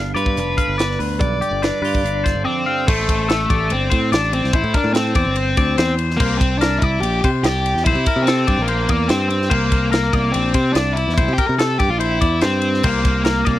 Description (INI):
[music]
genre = math rock and midwest emo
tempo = 144 BPM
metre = 4/4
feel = straight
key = unclear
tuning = A4 = 437 Hz
[part]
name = twelve-string electric guitar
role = accompaniment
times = 0.0-2.9 s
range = F2 to F4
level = -27 LUFS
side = right 10 dB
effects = spring reverb
[part]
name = twangy electric guitar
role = arpeggios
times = 0.0-13.6 s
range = G4 to F5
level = -23 LUFS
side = left 6 dB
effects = none
[part]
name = modern bright picked electric bass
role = bass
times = 0.0-13.6 s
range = F1 to C3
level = -21 LUFS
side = equal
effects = none
[part]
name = overdriven electric guitar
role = melody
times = 0.2-13.6 s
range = A3 to D5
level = -20 LUFS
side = equal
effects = none
[part]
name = crisp fusion drum kit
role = drums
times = 0.2-13.6 s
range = crash cymbal, hi-hat, kick drum, ride cymbal, snare drum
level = -21 LUFS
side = equal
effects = none
[sound]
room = little or no reverb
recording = dry, close 1970s-style studio recording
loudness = -15 LUFS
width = side -14 dB against mid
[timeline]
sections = 0.0-2.9 A section; 2.9-13.6 B section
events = none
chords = 0.0 G7; 2.9 Am7; 6.2 C7(no3)